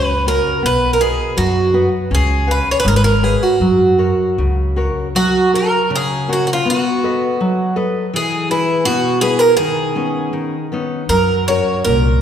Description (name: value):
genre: fado-style ballad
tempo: 81 BPM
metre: 2/4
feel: rubato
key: F# major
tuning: A4 = 440 Hz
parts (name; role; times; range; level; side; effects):
- picked twelve-string acoustic guitar; melody; 0.0-12.2 s; E4 to C#5; -16 LUFS; right 2 dB; none
- nylon-string guitar; accompaniment; 0.0-12.2 s; A#2 to E#5; -19 LUFS; left 2 dB; none
- upright bass; bass; 0.0-4.9, 11.1-12.2 s; G#1 to F#2; -18 LUFS; equal; none
room: wet concert hall reverb, RT60 2.1 s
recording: recorded in a church or concert hall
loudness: -13 LUFS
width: side -9 dB against mid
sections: 0.0-5.1 A section; 5.1-12.2 A section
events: none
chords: 0.0 F#; 0.6 B; 2.1 C#7; 3.6 F#; 6.7 B7; 8.1 E; 9.6 Badd9/D#; 11.1 F#